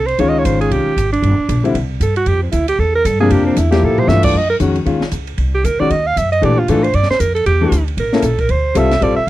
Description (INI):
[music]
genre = jazz, small-group swing and bop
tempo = 231 BPM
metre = 4/4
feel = swing 61% on 8ths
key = F major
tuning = A4 = 440 Hz
[part]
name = warm alto saxophone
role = second line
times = 0.0-9.3 s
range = C4 to F5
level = -16 LUFS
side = right 3 dB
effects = none
[part]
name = upright bass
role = bass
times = 0.0-9.3 s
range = G1 to Bb2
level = -17 LUFS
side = equal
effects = none
[part]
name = compact cocktail drum kit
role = drums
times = 0.1-9.3 s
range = crash cymbal, hi-hat, kick drum, ride cymbal, snare drum, toms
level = -25 LUFS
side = right 1 dB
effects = none
[part]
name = clear concert grand piano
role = accompaniment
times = 0.2-9.2 s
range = C3 to A4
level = -16 LUFS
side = left 4 dB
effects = none
[sound]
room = little or no reverb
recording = dry, close 1970s-style studio recording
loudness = -12 LUFS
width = side -15 dB against mid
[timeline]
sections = 0.0-4.4 A section; 4.4-9.3 A section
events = alto saxophone solo 0.0-9.3; drum fill 3.8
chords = 0.2 Dbmaj7; 1.2 Gm; 1.7 C5; 2.3 Fmaj9; 4.4 Gbsus2; 5.4 Cm; 5.9 Ebmadd9; 6.4 Bbmaj7; 7.5 Dsus24; 8.0 A; 8.5 Dm9